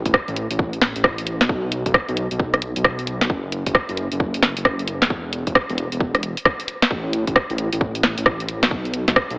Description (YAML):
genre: UK garage, two-step garage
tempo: 133 BPM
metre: 4/4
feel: swing 63% on 16ths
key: unclear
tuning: A4 = 444 Hz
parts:
  - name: dark detuned saw bass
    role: bass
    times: 0.0-9.4 s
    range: E1 to B1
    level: -25 LUFS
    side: equal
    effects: none
  - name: electronic kick drum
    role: drums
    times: 0.1-9.3 s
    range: none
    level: -26 LUFS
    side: equal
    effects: none
  - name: punchy analog drum machine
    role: drums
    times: 0.1-9.4 s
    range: hi-hat, rim click, snare drum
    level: -19 LUFS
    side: equal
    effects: none
room: light reverb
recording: AM radio sound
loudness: -18 LUFS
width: side -26 dB against mid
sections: 0.0-9.4 A section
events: none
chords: none